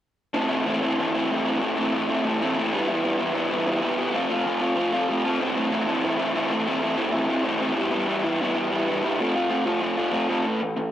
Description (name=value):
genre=punk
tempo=190 BPM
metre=4/4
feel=straight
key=A minor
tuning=A4 = 440 Hz
part: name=raw garage guitar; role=solo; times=0.3-10.9 s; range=A2 to F4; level=-22 LUFS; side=equal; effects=overdrive, cassette tape, tape echo
room=moderate booth ambience, RT60 0.2 s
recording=home recording on cassette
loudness=-22 LUFS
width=side -11 dB against mid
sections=0.3-10.4 A section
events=none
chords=0.3 Am; 2.7 Em; 4.1 F; 5.4 Am; 7.8 Em; 9.2 F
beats=| 0.35 0.66 0.98 1.30 | 1.61 1.93 2.24 2.56 | 2.88 3.19 3.51 3.82 | 4.14 4.45 4.77 5.08 | 5.40 5.72 6.03 6.35 | 6.66 6.98 7.29 7.61 | 7.92 8.24 8.55 8.87 | 9.18 9.50 9.81 10.13 | 10.44 10.76